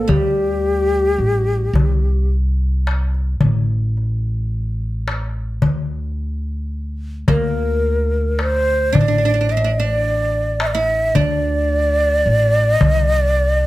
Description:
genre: Arabic maqam ensemble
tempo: 108 BPM (eighths)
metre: 10/8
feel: straight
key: D maqam bayati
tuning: A4 = 440 Hz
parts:
  - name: breathy ney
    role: melody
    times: 0.0-13.7 s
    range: G4 to E5-47c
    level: -18 LUFS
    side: equal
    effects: slapback echo
  - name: oud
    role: second line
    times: 0.0-13.7 s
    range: G3 to E4-50c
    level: -26 LUFS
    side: right 5 dB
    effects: none
  - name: upright bass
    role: bass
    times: 0.0-13.7 s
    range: A1 to D2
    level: -19 LUFS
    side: equal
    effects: none
  - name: darbuka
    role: percussion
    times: 0.1-13.5 s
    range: none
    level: -20 LUFS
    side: left 2 dB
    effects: none
room: light reverb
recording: close, detailed microphones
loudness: -16 LUFS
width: side -16 dB against mid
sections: 0.0-13.7 A section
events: none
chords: none

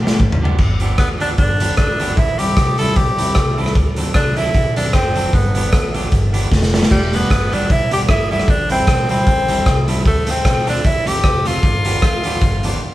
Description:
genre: ska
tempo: 152 BPM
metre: 4/4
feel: swing 55% on 8ths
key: unclear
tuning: A4 = 440 Hz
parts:
  - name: electric guitar at the edge of break-up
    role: accompaniment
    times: 0.0-12.8 s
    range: F3 to A4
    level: -24 LUFS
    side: right 1 dB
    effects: analog delay
  - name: upright bass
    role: bass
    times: 0.0-12.7 s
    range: E1 to D2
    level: -21 LUFS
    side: equal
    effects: none
  - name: raw garage drum kit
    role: drums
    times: 0.1-12.7 s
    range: crash cymbal, hi-hat, kick drum, rim click, snare drum, toms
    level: -16 LUFS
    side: equal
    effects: none
  - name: edgy tenor saxophone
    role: melody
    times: 1.0-12.9 s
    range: G3 to A4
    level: -19 LUFS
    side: equal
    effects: none
room: moderate large studio reverb, RT60 1.3 s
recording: band playing live in one room, vinyl crackle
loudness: -13 LUFS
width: side -15 dB against mid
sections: 0.0-12.9 A section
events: drum fill 0.0-0.6, 6.5-6.9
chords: 0.0 G7; 2.2 Am7; 3.8 D7; 5.3 G7; 6.9 Em7; 8.5 Am7; 10.1 Dm7; 11.6 G7

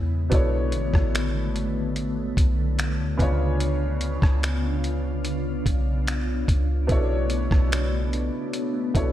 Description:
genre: contemporary R&B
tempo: 73 BPM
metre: 4/4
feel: straight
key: unclear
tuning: A4 = 441 Hz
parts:
  - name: clear concert grand piano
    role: accompaniment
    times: 0.0-9.1 s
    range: B2 to C#5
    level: -30 LUFS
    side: equal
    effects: analog chorus
  - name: glassy FM pad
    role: sustained chords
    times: 0.0-9.1 s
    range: C#3 to E#4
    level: -29 LUFS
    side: left 1 dB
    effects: ensemble chorus, built-in reverb, sidechain pumping
  - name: clean 808-style bass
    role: bass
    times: 0.0-9.1 s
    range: A1 to E2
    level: -25 LUFS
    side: equal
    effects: none
  - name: dusty soul sampler-style drum kit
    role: drums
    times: 0.3-9.1 s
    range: finger snaps, hi-hat, kick drum, rim click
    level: -24 LUFS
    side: equal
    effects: none
room: light reverb, digital ambience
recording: none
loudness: -22 LUFS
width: side -12 dB against mid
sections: 0.0-9.1 A section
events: none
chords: 0.3 Bm11; 3.2 C#7b9; 6.9 Bm11

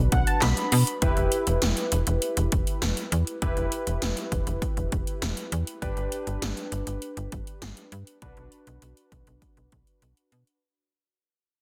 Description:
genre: synth-pop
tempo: 100 BPM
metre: 4/4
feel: straight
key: unclear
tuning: A4 = 441 Hz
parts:
  - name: warm analog keys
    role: accompaniment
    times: 0.0-10.6 s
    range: D4 to B5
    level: -33 LUFS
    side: equal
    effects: chorus
  - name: slap-like FM bass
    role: bass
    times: 0.0-10.4 s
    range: E1 to B2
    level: -29 LUFS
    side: equal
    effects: none
  - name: 80s electronic pad drums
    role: drums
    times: 0.1-10.6 s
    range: handclaps, hi-hat, kick drum, snare drum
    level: -31 LUFS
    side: equal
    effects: none
room: moderate lush hall reverb, RT60 2.1 s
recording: dense, heavily limited modern master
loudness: -27 LUFS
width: mono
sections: 0.0-1.0 A section; 1.0-10.6 B section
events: synth keys fill 0.0-1.0; fade-out 1.0-10.6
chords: 0.0 Bm; 1.0 Em; 5.8 G; 8.2 Bm

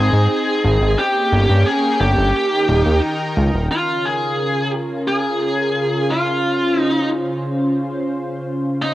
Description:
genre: synthwave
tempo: 88 BPM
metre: 4/4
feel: straight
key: unclear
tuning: A4 = 440 Hz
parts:
  - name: high-gain lead guitar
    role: melody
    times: 0.0-8.9 s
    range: Eb4 to Ab4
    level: -19 LUFS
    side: equal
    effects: distortion, cassette tape, tape echo
  - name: lush unison pad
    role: sustained chords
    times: 0.0-8.9 s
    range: Db3 to G5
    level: -21 LUFS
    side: equal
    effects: chorus
  - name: chorused synth bass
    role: bass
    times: 0.0-3.7 s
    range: Eb1 to Ab2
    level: -15 LUFS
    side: equal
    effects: none
room: wet spring reverb, RT60 1.1 s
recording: home recording on cassette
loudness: -16 LUFS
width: side -15 dB against mid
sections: 0.0-3.7 A section; 3.7-8.9 B section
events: none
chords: 0.0 Ab; 1.0 Gdim; 2.3 Eb; 3.7 Db6

